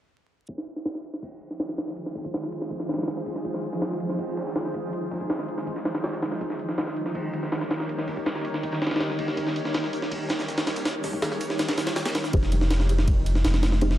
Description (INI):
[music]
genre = drum and bass, jungle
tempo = 162 BPM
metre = 4/4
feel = straight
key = F minor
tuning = A4 = 440 Hz
[part]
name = granular cloud pad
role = sustained chords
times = 1.6-14.0 s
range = Ab3 to Db5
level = -30 LUFS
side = equal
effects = built-in reverb
[part]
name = crunchy breakbeat drum kit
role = drums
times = 0.5-12.3 s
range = hi-hat, shaker, snare drum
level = -43 LUFS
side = right 1 dB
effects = none
[part]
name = jungle sampler-style drum kit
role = drums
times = 0.5-14.0 s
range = hi-hat, kick drum, ride cymbal, snare drum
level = -28 LUFS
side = equal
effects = high-pass filter on cymbals, high-pass filter on kick, high-pass filter on snare, high-pass filter on hats, high-pass filter on room
[part]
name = filtered dub chord stab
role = stabs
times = 12.3-13.9 s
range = Eb4 to C5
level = -30 LUFS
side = right 1 dB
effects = phaser, ensemble chorus, cassette tape, dub echo
[part]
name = soft dub sub bass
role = bass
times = 12.3-14.0 s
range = F1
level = -22 LUFS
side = equal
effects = none
[sound]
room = light reverb, studio reverb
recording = vinyl crackle, low-pass filter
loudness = -25 LUFS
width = side -13 dB against mid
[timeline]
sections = 0.5-12.3 A section; 12.3-14.0 B section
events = filter sweep 0.5-12.3; filter sweep on synth stab 12.3-14.0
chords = 0.5 Fm7; 6.4 Eb7; 12.3 Fm7